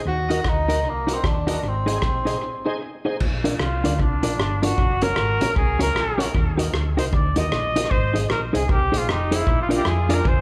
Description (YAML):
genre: ska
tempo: 153 BPM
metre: 4/4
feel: swing 62% on 8ths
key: Bb mixolydian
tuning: A4 = 440 Hz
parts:
  - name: warm tenor saxophone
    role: melody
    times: 0.1-2.8 s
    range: Bb3 to Gb4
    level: -28 LUFS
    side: equal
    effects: none
  - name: hollow-body short-scale fingered electric bass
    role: bass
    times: 0.1-10.4 s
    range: F1 to F2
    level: -28 LUFS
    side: equal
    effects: none
  - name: clean electric guitar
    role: accompaniment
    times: 0.3-10.2 s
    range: Db4 to Eb5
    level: -28 LUFS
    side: equal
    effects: none
  - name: bright tonewheel organ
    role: stabs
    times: 0.3-3.2, 9.7-10.2 s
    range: D4 to C5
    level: -33 LUFS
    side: equal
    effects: overdrive, chorus vibrato, slow rotary speaker
  - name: vintage drum kit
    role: drums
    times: 0.3-10.4 s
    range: crash cymbal, hi-hat, kick drum, rim click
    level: -27 LUFS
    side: equal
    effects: tape echo
  - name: breathy trumpet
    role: melody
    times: 3.6-10.4 s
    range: D4 to Eb5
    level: -26 LUFS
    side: equal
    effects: tape echo
room: moderate large studio reverb, RT60 1.3 s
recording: band playing live in one room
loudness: -22 LUFS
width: mono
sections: 0.0-3.2 A section; 3.2-10.4 B section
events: break 2.4-3.2; trumpet solo 3.2-10.4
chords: 0.1 Ebm; 1.6 Ab; 3.2 Bb; 4.8 Gb; 6.3 Ebm; 7.9 Ab; 9.5 Bb